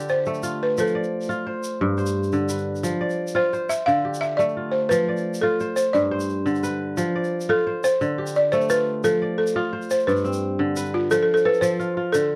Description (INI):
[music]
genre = west african traditional, West African string and xylophone music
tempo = 116 BPM (dotted quarters)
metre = 12/8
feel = straight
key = F lydian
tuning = A4 = 440 Hz
[part]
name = balafon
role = melody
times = 0.0-12.4 s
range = F4 to F5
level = -24 LUFS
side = equal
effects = none
[part]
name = kora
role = arpeggios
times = 0.0-12.4 s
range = G2 to D5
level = -27 LUFS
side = equal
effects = none
[part]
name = tube shaker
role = percussion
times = 0.1-12.2 s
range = none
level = -41 LUFS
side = equal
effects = none
[sound]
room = moderate small room reverb, RT60 0.5 s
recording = worn, warbling old tape, cassette tape, warbly pitch drift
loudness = -23 LUFS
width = mono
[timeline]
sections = 0.0-11.1 A section; 11.1-12.4 B section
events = none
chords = 0.0 Dm; 0.8 F; 1.8 G; 2.8 F5; 3.9 Dm; 4.9 F; 5.9 G; 7.0 F; 8.0 Dm; 9.0 F; 10.1 G; 11.1 F